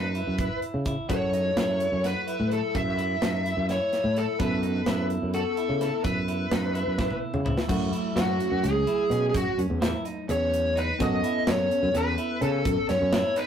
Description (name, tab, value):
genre	progressive instrumental, band music in an uneven meter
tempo	254 BPM (eighths)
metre	7/8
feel	straight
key	F# dorian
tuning	A4 = 441 Hz
part	smooth overdriven lead guitar	melody	0.0-13.5 s	F#4 to E5	-27 LUFS	equal	none
part	clean electric guitar	arpeggios	0.0-13.5 s	C#4 to F#4	-35 LUFS	left 1 dB	none
part	sustaining fretless electric bass	bass	0.0-13.2 s	C#2 to C#3	-28 LUFS	right 1 dB	none
part	tight metal drum kit	drums	0.1-13.5 s	crash cymbal, hi-hat, kick drum, snare drum, toms	-30 LUFS	equal	none
part	bell-like tine electric piano	accompaniment	1.1-13.5 s	F#3 to A4	-34 LUFS	right 1 dB	medium stereo tremolo
part	tube shaker	percussion	7.7-13.0 s	none	-51 LUFS	right 6 dB	none
room	moderate small room reverb, RT60 0.5 s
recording	rough rehearsal-room recording, warm saturation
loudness	-23 LUFS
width	side -8 dB against mid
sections	0.0-7.7 A section; 7.7-13.5 B section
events	drum fill 7.0-7.7; lead electric guitar solo 7.7-13.5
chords	0.0 F#7sus4; 1.1 F#m7; 4.4 Aadd9/F#; 7.7 F#m7; 11.0 Aadd9